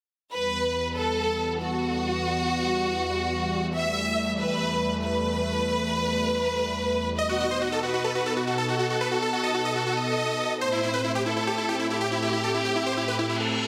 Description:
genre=trance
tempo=140 BPM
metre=4/4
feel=straight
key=E minor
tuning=A4 = 442 Hz
part: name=rich symphonic violin section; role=second line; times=0.3-13.7 s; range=F#4 to E5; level=-29 LUFS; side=equal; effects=tape echo
part: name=lush unison pad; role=sustained chords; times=0.3-13.7 s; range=E2 to F#4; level=-32 LUFS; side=equal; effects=chorus
part: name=supersaw chords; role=melody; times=7.2-13.7 s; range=E4 to D#5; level=-29 LUFS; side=equal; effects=tape echo
part: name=reverse cymbal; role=sound effects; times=13.3-13.7 s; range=none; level=-30 LUFS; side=equal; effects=none
room=wet lush hall reverb, RT60 2.6 s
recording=dense, heavily limited modern master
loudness=-26 LUFS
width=mono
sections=0.3-13.7 A section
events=reverse cymbal 13.3-13.7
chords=0.3 Em; 7.2 B; 10.6 Am

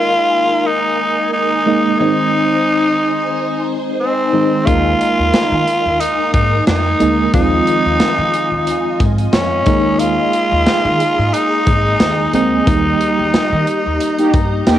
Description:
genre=1980s-style pop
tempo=90 BPM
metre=4/4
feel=swing 55% on 16ths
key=Eb major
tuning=A4 = 439 Hz
part: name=raspy tenor saxophone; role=melody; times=0.0-14.8 s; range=C4 to F4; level=-16 LUFS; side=equal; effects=cassette tape
part: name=FM electric piano with auto-pan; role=accompaniment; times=0.0-14.8 s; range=Eb3 to Bb5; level=-18 LUFS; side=equal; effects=phaser, cassette tape
part: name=string machine, full ensemble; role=sustained chords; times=0.0-14.8 s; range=Eb4 to Bb5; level=-23 LUFS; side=equal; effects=phaser, ensemble chorus, cassette tape
part: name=upright bass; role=bass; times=4.7-14.8 s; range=Ab1 to Eb3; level=-20 LUFS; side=equal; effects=none
part: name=modern studio drum kit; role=drums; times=4.7-14.8 s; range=hi-hat, kick drum, snare drum, tambourine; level=-18 LUFS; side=equal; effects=cassette tape
part: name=mellow synth brass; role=stabs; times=14.2-14.8 s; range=Bb3 to G4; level=-14 LUFS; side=equal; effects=chorus, cassette tape
room=light reverb, studio reverb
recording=home recording on cassette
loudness=-12 LUFS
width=side -12 dB against mid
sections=0.0-14.8 A section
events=band accent 12.7-14.8; FM electric piano fill 14.0-14.8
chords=0.0 Ebsus4; 2.0 Ab/Eb; 4.7 Ebsus4; 7.3 Fm7/Eb; 9.7 Ebsus4; 12.7 Eb

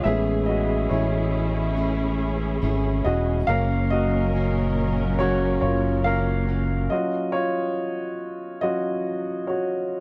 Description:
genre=pop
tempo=70 BPM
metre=4/4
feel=straight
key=unclear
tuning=A4 = 437 Hz
part: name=warm upright piano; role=accompaniment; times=0.0-10.0 s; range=Gb3 to F5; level=-27 LUFS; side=equal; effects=none
part: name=muted studio string section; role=sustained chords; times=0.0-6.9 s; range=Bb2 to Bb4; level=-31 LUFS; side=equal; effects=none
part: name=fingerpicked plugged-in steel-string acoustic guitar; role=arpeggios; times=0.0-6.9 s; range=Gb2 to G#4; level=-33 LUFS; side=equal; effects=none
part: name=fingered electric bass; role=bass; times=0.0-6.9 s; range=E1 to A1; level=-27 LUFS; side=equal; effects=none
room=light reverb, small room ambience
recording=dry, close 1970s-style studio recording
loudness=-24 LUFS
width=mono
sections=0.0-10.0 A section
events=upright piano solo 0.0-10.0; stop 6.9-10.0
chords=0.1 Amaj7; 3.5 Gb; 6.9 Ebm7

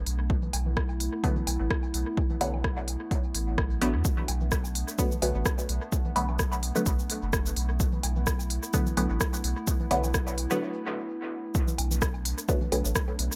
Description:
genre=dub techno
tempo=128 BPM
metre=4/4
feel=swing 55% on 16ths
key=B minor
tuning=A4 = 440 Hz
part: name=warbly tape-like pad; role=sustained chords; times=0.0-13.4 s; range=A3 to E4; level=-40 LUFS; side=equal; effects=chorus, built-in reverb, sidechain pumping
part: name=soft dub sub bass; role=bass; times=0.0-13.3 s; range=F#1 to E2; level=-32 LUFS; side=equal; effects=sidechain pumping
part: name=deep house drum kit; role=drums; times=0.1-13.4 s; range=cabasa, hi-hat, rim click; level=-35 LUFS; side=equal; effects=dub echo
part: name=electronic kick drum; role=drums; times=0.3-13.1 s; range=none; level=-31 LUFS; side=equal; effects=none
part: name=congas and woodblock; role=percussion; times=0.4-12.8 s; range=none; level=-43 LUFS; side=equal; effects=overdrive, sidechain pumping on perc, dub echo
part: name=filtered dub chord stab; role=stabs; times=1.2-12.8 s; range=D3 to B3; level=-34 LUFS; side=equal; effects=chorus, phaser, dub echo
room=light reverb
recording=echo-heavy mix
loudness=-28 LUFS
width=mono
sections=0.0-11.5 A section; 11.5-13.4 A section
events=break 10.6-11.5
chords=0.0 Bm7

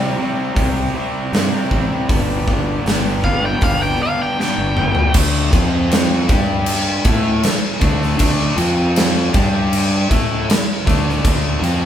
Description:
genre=blues rock power trio and southern rock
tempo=79 BPM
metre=4/4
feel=straight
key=unclear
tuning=A4 = 440 Hz
part: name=biting lead guitar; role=melody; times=0.0-5.1 s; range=D5 to G5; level=-21 LUFS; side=left 1 dB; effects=overdrive
part: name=distorted electric guitar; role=riff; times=0.0-11.9 s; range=G2 to A4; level=-20 LUFS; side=equal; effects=distortion
part: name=fuzz fingered electric bass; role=bass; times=0.0-11.9 s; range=G1 to C3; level=-21 LUFS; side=equal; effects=overdrive
part: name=big rock drum kit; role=drums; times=0.6-11.8 s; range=crash cymbal, hi-hat, kick drum, snare drum, toms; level=-18 LUFS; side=equal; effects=none
room=moderate large studio reverb, RT60 1.4 s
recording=band playing live in one room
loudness=-14 LUFS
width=side -10 dB against mid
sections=0.0-5.2 A section; 5.2-11.9 B section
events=drum fill 4.4-5.2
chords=0.0 C; 2.1 G; 5.2 D5; 5.5 F5; 6.3 G5; 7.1 D5; 8.6 F5; 9.3 G5; 10.1 D5

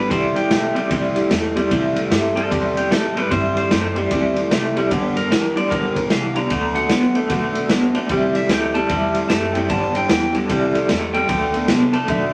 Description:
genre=rockabilly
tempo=150 BPM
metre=4/4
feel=swing 63% on 8ths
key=unclear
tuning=A4 = 440 Hz
part: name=electric guitar through a small old amp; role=melody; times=0.0-12.3 s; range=G4 to Bb5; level=-27 LUFS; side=equal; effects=none
part: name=picked steel-string acoustic guitar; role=accompaniment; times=0.0-12.3 s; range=G2 to A4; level=-26 LUFS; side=equal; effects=none
part: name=electric guitar through a small old amp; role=riff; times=0.0-12.3 s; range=G2 to B3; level=-23 LUFS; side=equal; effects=tremolo
part: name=upright bass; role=bass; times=0.0-12.3 s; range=G1 to A2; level=-33 LUFS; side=equal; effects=none
part: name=raw garage drum kit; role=drums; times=0.1-12.2 s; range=kick drum, ride cymbal, snare drum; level=-25 LUFS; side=equal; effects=none
room=wet studio reverb, RT60 0.5 s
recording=vinyl crackle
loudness=-19 LUFS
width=mono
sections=0.0-12.3 A section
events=none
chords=0.1 C6; 4.9 G6; 6.5 D6; 8.1 C6; 9.7 G6; 10.5 C6; 11.3 D6

